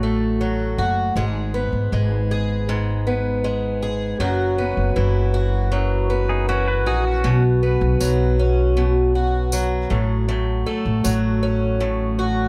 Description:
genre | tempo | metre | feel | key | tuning
acoustic pop | 79 BPM | 4/4 | straight | unclear | A4 = 440 Hz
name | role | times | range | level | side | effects
fingerpicked twelve-string acoustic guitar | accompaniment | 0.0-12.5 s | F#2 to G#4 | -24 LUFS | equal | none
upright bass | bass | 0.0-12.5 s | F#1 to B1 | -23 LUFS | equal | none
pedal steel guitar | second line | 6.3-7.4 s | C#4 to B4 | -27 LUFS | equal | none
tambourine | percussion | 8.0-11.2 s | none | -31 LUFS | equal | none
room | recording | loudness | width
little or no reverb | dry, close 1970s-style studio recording | -20 LUFS | mono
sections
0.0-7.2 A section; 7.2-12.5 B section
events
none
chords
0.0 F#m; 1.2 G#m; 4.2 F#7sus4; 7.2 Bsus2; 9.9 A6

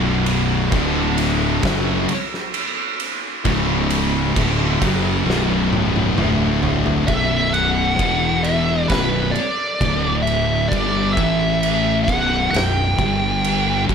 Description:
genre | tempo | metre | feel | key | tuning
stoner and doom metal | 66 BPM | 4/4 | straight | B minor | A4 = 440 Hz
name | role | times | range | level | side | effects
thick fuzz guitar | riff | 0.0-13.9 s | B1 to A3 | -22 LUFS | left 9 dB | distortion
thick fuzz guitar | riff | 0.0-13.9 s | B1 to A3 | -24 LUFS | right 10 dB | distortion
tight distorted guitar | riff | 0.0-7.1 s | B1 to F#3 | -24 LUFS | equal | distortion
fuzz fingered electric bass | bass | 0.0-13.9 s | B0 to A1 | -24 LUFS | equal | overdrive
oversized low-tuned drum kit | drums | 0.3-13.9 s | crash cymbal, kick drum, ride cymbal, snare drum, toms | -23 LUFS | right 1 dB | none
fuzz lead guitar | melody | 7.1-13.8 s | B4 to G5 | -20 LUFS | right 1 dB | wah, distortion, digital delay
room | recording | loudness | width
light reverb, studio reverb | none | -16 LUFS | side -6 dB against mid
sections
0.0-7.1 A section; 7.1-13.9 B section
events
drum fill 5.3-7.1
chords
0.0 B5; 0.7 D5; 1.6 F#5; 3.4 C#5; 4.4 Bm; 6.2 D5; 7.1 B5; 8.0 E5; 8.9 Bm; 9.8 D5; 10.7 G5; 11.2 A5; 12.1 B5; 13.0 G5

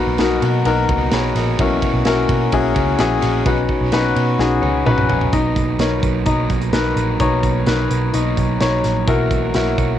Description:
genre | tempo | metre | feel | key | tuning
piano-driven pop | 128 BPM | 4/4 | straight | B major | A4 = 436 Hz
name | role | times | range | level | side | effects
warm baby grand piano | accompaniment | 0.0-10.0 s | B2 to B5 | -18 LUFS | left 6 dB | cassette tape
overdriven semi-hollow guitar | riff | 0.0-10.0 s | B2 to C#5 | -24 LUFS | right 10 dB | cassette tape
vintage muted picked electric bass | bass | 0.1-10.0 s | A#1 to B2 | -20 LUFS | right 2 dB | none
modern studio drum kit | drums | 0.2-9.9 s | hi-hat, kick drum, ride cymbal, snare drum, toms | -23 LUFS | right 2 dB | cassette tape
room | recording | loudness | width
light reverb | home recording on cassette | -15 LUFS | side -10 dB against mid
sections
0.0-5.3 A section; 5.3-10.0 B section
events
grand piano fill 0.2-1.6; drum fill 4.4-5.3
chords
0.0 Bmaj7; 1.6 F#7/B; 3.5 Badd9; 5.3 Bmaj7; 9.1 F#7

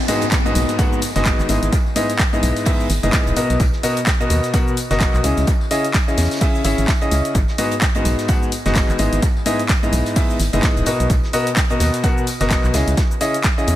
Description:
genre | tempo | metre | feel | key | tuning
piano house | 128 BPM | 4/4 | swing 58% on 16ths | unclear | A4 = 440 Hz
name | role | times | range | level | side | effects
downlifter | sound effects | 0.0-3.6 s | none | -28 LUFS | equal | none
bright grand piano | riff | 0.1-13.8 s | G#2 to F#5 | -20 LUFS | left 1 dB | sidechain pumping, dub echo
damped 70s drum kit | drums | 0.1-13.8 s | hi-hat, snare drum, tambourine | -33 LUFS | right 2 dB | sidechain pumping on hats, high-pass filter on hats, high-pass filter on snare, sidechain pumping on perc, high-pass filter on perc, high-pass filter on room, dub echo
punchy analog drum machine | drums | 0.1-13.8 s | cabasa, handclaps, hi-hat | -24 LUFS | left 1 dB | overdrive, dub echo
tambourine | percussion | 0.1-13.8 s | none | -37 LUFS | left 2 dB | none
electronic kick drum | drums | 0.3-13.6 s | none | -18 LUFS | equal | overdrive
organ-like FM bass | bass | 0.6-13.8 s | D#1 to E2 | -19 LUFS | equal | sidechain pumping
room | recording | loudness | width
light reverb, small room ambience | echo-heavy mix | -15 LUFS | side -13 dB against mid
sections
0.0-13.8 A section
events
none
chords
0.0 G#m7; 1.5 Emaj7/G#; 3.4 Bmaj7; 5.2 C#madd9; 7.3 G#m7; 9.0 Emaj7/G#; 10.9 Bmaj7; 12.7 C#madd9

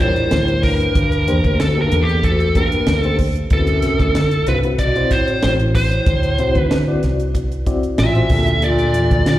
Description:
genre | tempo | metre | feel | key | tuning
electric jazz fusion | 94 BPM | 4/4 | straight | D mixolydian | A4 = 442 Hz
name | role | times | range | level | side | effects
smooth overdriven lead guitar | melody | 0.0-9.4 s | G4 to E5 | -20 LUFS | left 1 dB | slapback echo, tape echo
mellow bass clarinet | second line | 0.0-9.4 s | D2 to B2 | -21 LUFS | right 1 dB | slapback echo
reed electric piano | accompaniment | 0.0-9.3 s | G3 to D5 | -24 LUFS | left 2 dB | medium tremolo, slapback echo
fingered electric bass | bass | 0.0-9.4 s | A1 to D3 | -18 LUFS | equal | none
tight funk drum kit | drums | 0.0-9.4 s | hi-hat, kick drum, snare drum | -20 LUFS | equal | none
room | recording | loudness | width
light reverb | live gig heard through the venue's PA, recital hall reverb | -14 LUFS | side -14 dB against mid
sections
0.0-9.4 A section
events
none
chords
0.0 Gmadd9/D; 3.5 D13; 8.3 Gmadd9/D

